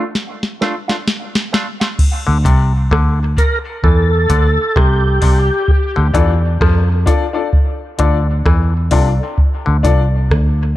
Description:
dub reggae; 65 BPM; 4/4; swing 60% on 16ths; D minor; A4 = 440 Hz
electric guitar with an envelope filter; accompaniment; 0.0-1.9 s; A3 to F4; -23 LUFS; right 2 dB; high-pass filter, dub echo
soft vintage rhythm box; drums; 0.2-10.6 s; crash cymbal, hi-hat, kick drum, rim click, snare drum; -15 LUFS; equal
bright clav; riff; 2.3-9.8 s; C3 to F3; -24 LUFS; left 5 dB; dub echo
vintage muted fingered electric bass; bass; 2.3-10.8 s; C2 to F2; -14 LUFS; equal
clear upright piano; stabs; 2.4-10.0 s; D4 to D5; -22 LUFS; left 7 dB; high-pass filter, dub echo
tonewheel organ; melody; 3.4-5.7 s; G4 to Bb4; -18 LUFS; right 1 dB; overdrive, chorus vibrato, slow rotary speaker, dub echo
little or no reverb; -12 LUFS; side -15 dB against mid
0.0-2.0 A section; 2.0-10.8 B section
break 0.0-2.0; filter sweep 0.0-5.7; drum fill 0.1-2.0
0.0 Dm

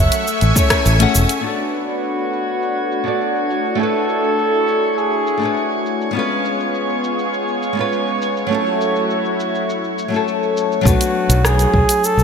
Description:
sunset chillout; 102 BPM; 4/4; straight; B dorian; A4 = 440 Hz
mellow flugelhorn; melody; 0.0-5.9, 10.9-12.2 s; F#4 to E5; -20 LUFS; equal; digital delay
nylon-string guitar; accompaniment; 0.0-12.2 s; F#3 to F#5; -21 LUFS; moving between left 6 dB and right 6 dB; auto-pan, low-pass filter, digital delay
lush unison pad; sustained chords; 0.0-10.8 s; A3 to C#6; -22 LUFS; left 1 dB; chorus
modern bright fingered electric bass; bass; 0.0-1.2, 10.9-12.2 s; E1 to B1; -15 LUFS; equal
smooth R&B drum kit; drums; 0.1-12.2 s; crash cymbal, hi-hat, rim click, shaker; -21 LUFS; equal; low-pass filter on snare, low-pass filter on hats, low-pass filter on perc, low-pass filter on cymbals, gated reverb
electronic kick drum; drums; 0.6-0.8, 10.9-11.9 s; -17 LUFS; equal; overdrive
drifting glass-harmonics texture; texture; 1.9-10.9 s; C#5 to C#6; -26 LUFS; equal; chorus, built-in reverb
wet lush hall reverb, RT60 2.7 s; bright 1980s-style digital production; -15 LUFS; side -6 dB against mid
0.0-1.4 A section; 1.4-10.9 B section; 10.9-12.2 A section
0.3 Amaj7; 1.4 Bm7; 3.5 E9sus4; 6.1 C#7; 8.5 F#m7; 10.9 Bm7

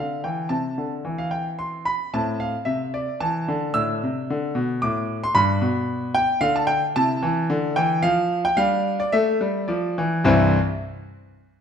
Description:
classical-period piano sonatina; 111 BPM; 3/4; straight; C major; A4 = 440 Hz
clear grand piano; solo; 0.0-10.6 s; C2 to E6; -20 LUFS; equal
moderate recital hall reverb, RT60 1.4 s; minimal, uncompressed stereo recording; -20 LUFS; side -7 dB against mid
0.0-10.3 A section; 10.3-11.6 B section
0.0 Cadd9 (rootless); 0.5 C; 2.1 Am; 3.8 D5/A; 5.4 G; 7.0 C; 8.0 N.C.; 8.6 G5; 10.3 C

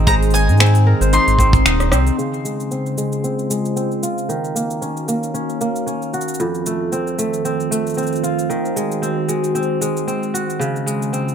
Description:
folktronica; 114 BPM; 4/4; swing 56% on 16ths; A4 = 440 Hz
bowl-back mandolin; melody; 0.0-1.9 s; Ab5 to C6; -21 LUFS; left 1 dB; ping-pong delay
warbly tape-like pad; sustained chords; 0.0-11.3 s; Db3 to Eb5; -23 LUFS; equal; chorus, built-in reverb
kora; arpeggios; 0.0-11.3 s; F2 to C5; -21 LUFS; right 1 dB; low-pass filter, ping-pong delay
round analog bass; bass; 0.0-2.1 s; Eb1 to Ab2; -14 LUFS; equal
kick drum; drums; 0.1-1.6 s; -16 LUFS; equal
organic electronic drum kit; drums; 0.1-11.3 s; finger snaps, hi-hat, rim click, shaker; -23 LUFS; equal; overdrive
light reverb, studio reverb; -16 LUFS; side -8 dB against mid
0.0-2.2 A section; 2.2-11.3 B section
drum fill 1.8-2.2; filter sweep on kora 2.2-11.3
0.0 Ab; 2.2 Dbmaj7; 4.3 Ebm7; 6.4 F7; 8.5 Ab7/Eb; 10.6 Dbmaj7

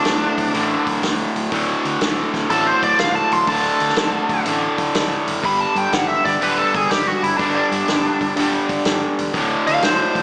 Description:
blues rock power trio and southern rock; 123 BPM; 4/4; swing 67% on 8ths; A4 = 440 Hz
smooth overdriven lead guitar; melody; 0.0-10.2 s; D4 to C6; -19 LUFS; equal
overdriven semi-hollow guitar; riff; 0.0-10.2 s; D2 to G3; -20 LUFS; equal; slapback echo
hollow-body short-scale fingered electric bass; bass; 0.1-10.2 s; D1 to G2; -32 LUFS; equal
vintage drum kit; drums; 0.1-10.2 s; hi-hat, kick drum, snare drum; -24 LUFS; equal
wet concert hall reverb, RT60 2.5 s; big arena sound, small speaker sound; -16 LUFS; side -28 dB against mid
0.0-10.2 A section
lead electric guitar solo 0.0-10.2
0.0 D5; 5.4 G5; 9.3 D5

